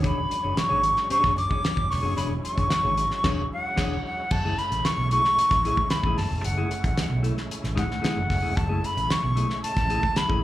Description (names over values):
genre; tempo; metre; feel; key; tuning
funk; 112 BPM; 4/4; straight; F# minor; A4 = 440 Hz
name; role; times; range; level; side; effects
mellow electric guitar; accompaniment; 0.0-10.4 s; A3 to C#5; -32 LUFS; left 4 dB; slapback echo
overdriven tonewheel organ; sustained chords; 0.0-10.4 s; F#3 to E4; -36 LUFS; right 2 dB; slow rotary speaker, chorus vibrato
hollow-body short-scale fingered electric bass; bass; 0.0-10.4 s; E1 to B1; -27 LUFS; equal; none
damped 70s drum kit; drums; 0.0-10.4 s; crash cymbal, hi-hat, kick drum, snare drum; -28 LUFS; equal; none
breathy silver concert flute; melody; 0.1-10.4 s; F#5 to D6; -25 LUFS; equal; slapback echo
room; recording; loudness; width
little or no reverb; live gig heard through the venue's PA, club reverb; -22 LUFS; side -14 dB against mid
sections
0.0-4.3 A section; 4.3-10.4 B section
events
band accent 3.2-4.3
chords
0.0 E13; 4.3 F#m9